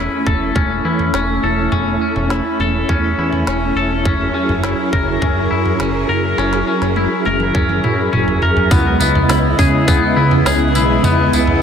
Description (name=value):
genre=dream pop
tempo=103 BPM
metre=4/4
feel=straight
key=unclear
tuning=A4 = 441 Hz
part: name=soft string machine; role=sustained chords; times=0.0-11.6 s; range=C#3 to D#5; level=-18 LUFS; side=right 1 dB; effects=ensemble chorus
part: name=twangy electric guitar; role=arpeggios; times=0.0-11.6 s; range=B3 to A#4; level=-18 LUFS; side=left 3 dB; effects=lush chorus, tape echo
part: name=fat analog bass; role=bass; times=0.0-11.6 s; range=E1 to C#3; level=-20 LUFS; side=right 1 dB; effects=none
part: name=organic electronic drum kit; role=drums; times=0.3-11.6 s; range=kick drum, snare drum, tambourine, toms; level=-19 LUFS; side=right 1 dB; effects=soft clipping on snare
room=light reverb, digital ambience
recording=dense, heavily limited modern master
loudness=-13 LUFS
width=side -7 dB against mid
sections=0.0-8.7 A section; 8.7-11.6 B section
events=drum fill 6.4-8.7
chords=0.0 A/E; 4.1 F#7; 8.7 C#m7